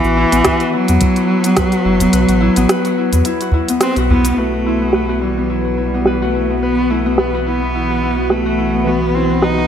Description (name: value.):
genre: organic downtempo.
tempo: 107 BPM.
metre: 4/4.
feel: swing 55% on 16ths.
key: unclear.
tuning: A4 = 441 Hz.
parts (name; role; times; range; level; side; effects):
rich cello; melody; 0.0-9.7 s; E3 to D#4; -17 LUFS; right 1 dB; digital delay.
Celtic harp; arpeggios; 0.0-9.7 s; B3 to B4; -18 LUFS; left 4 dB; low-pass filter, tape echo.
warm sub bass; bass; 0.0-9.7 s; F#1 to E2; -20 LUFS; equal; none.
afro-pop drum kit; drums; 0.0-9.5 s; hi-hat, rim click, shaker; -18 LUFS; right 1 dB; low-pass filter on snare, small room reverb, low-pass filter on hats, low-pass filter on perc.
electronic kick drum; drums; 0.5-1.7 s; none; -19 LUFS; equal; small room reverb.
udu; percussion; 2.0-4.2 s; none; -18 LUFS; right 1 dB; none.
tine electric piano; accompaniment; 4.3-9.7 s; E3 to B4; -23 LUFS; right 2 dB; overdrive, medium stereo tremolo, sidechain pumping, tape echo.
airy breathy pad; sustained chords; 5.3-9.7 s; E3 to B4; -23 LUFS; right 2 dB; chorus, phaser, sidechain pumping.
room: moderate lush hall reverb, RT60 2.0 s.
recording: none.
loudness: -13 LUFS.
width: side -8 dB against mid.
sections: 0.0-4.4 A section; 4.4-9.7 B section.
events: kick drops out 2.1-4.4; band accent 3.8.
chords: 0.0 Bsus4.